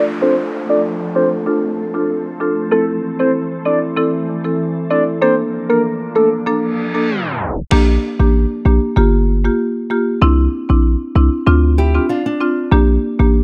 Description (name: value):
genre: dancehall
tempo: 96 BPM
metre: 4/4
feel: straight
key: D minor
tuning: A4 = 442 Hz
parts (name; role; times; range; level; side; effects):
- soft octave-layered synth lead; melody; 0.0-6.3 s; A4 to D5; -19 LUFS; equal; chorus, low-pass filter, delay
- marimba with medium mallets; accompaniment; 0.0-13.4 s; Bb3 to A4; -20 LUFS; equal; low-pass filter
- glassy FM pad; sustained chords; 0.0-7.7 s; E3 to A4; -27 LUFS; equal; ensemble chorus, built-in reverb, low-pass filter
- downlifter and reverse cymbal; sound effects; 0.0-2.7, 6.7-7.7 s; none; -30 LUFS; equal; none
- hard-hitting 808-style bass; bass; 7.7-13.4 s; G1 to D2; -15 LUFS; equal; none
- nylon-string guitar; arpeggios; 11.8-12.7 s; D4 to G4; -25 LUFS; equal; low-pass filter
room: little or no reverb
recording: tape stop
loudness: -16 LUFS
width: mono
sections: 0.0-7.7 A section; 7.7-13.4 B section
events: filter sweep 0.0-7.7; reverse cymbal 6.7-7.7; tape stop 7.1-7.7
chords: 0.0 Dm; 2.7 Am; 5.2 Bbmaj7; 7.7 Bb6; 9.0 Gm7; 10.2 Cadd9; 11.5 Dm7; 12.7 Bb6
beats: | 0.22 0.84 1.47 2.09 | 2.72 3.34 3.97 4.59 | 5.22 5.84 6.47 7.09 | 7.72 8.34 8.97 9.59 | 10.22 10.84 11.47 12.09 | 12.72 13.34